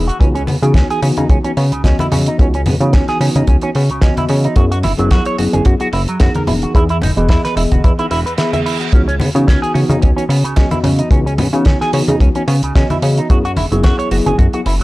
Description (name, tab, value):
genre	nu-disco, nu disco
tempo	110 BPM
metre	4/4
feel	swing 55% on 16ths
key	C# minor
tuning	A4 = 440 Hz
part	mellow tine electric piano	accompaniment	0.0-14.6 s	E3 to D#5	-20 LUFS	left 1 dB	medium stereo tremolo, low-pass filter, tape echo
part	chorused synth bass	bass	0.0-14.8 s	E1 to C#3	-15 LUFS	equal	tube saturation
part	electric guitar with an envelope filter	riff	0.1-14.8 s	C#3 to E5	-21 LUFS	right 2 dB	wide subtle chorus, tape echo
part	damped 70s drum kit	drums	0.1-14.8 s	hi-hat, snare drum	-25 LUFS	right 1 dB	none
part	kick drum	drums	0.2-14.5 s	none	-12 LUFS	equal	none
part	congas	percussion	0.5-14.4 s	none	-21 LUFS	left 1 dB	none
part	reverse cymbal	sound effects	8.0-8.9 s	none	-28 LUFS	right 6 dB	none
room	little or no reverb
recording	dry, gritty hardware recording, transformer saturation, cassette tape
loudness	-11 LUFS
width	side -19 dB against mid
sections	0.0-14.8 A section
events	reverse cymbal 8.0-8.9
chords	0.2 C#m11; 4.6 F#9sus4; 6.5 Emaj7; 8.9 C#m11; 13.3 F#9sus4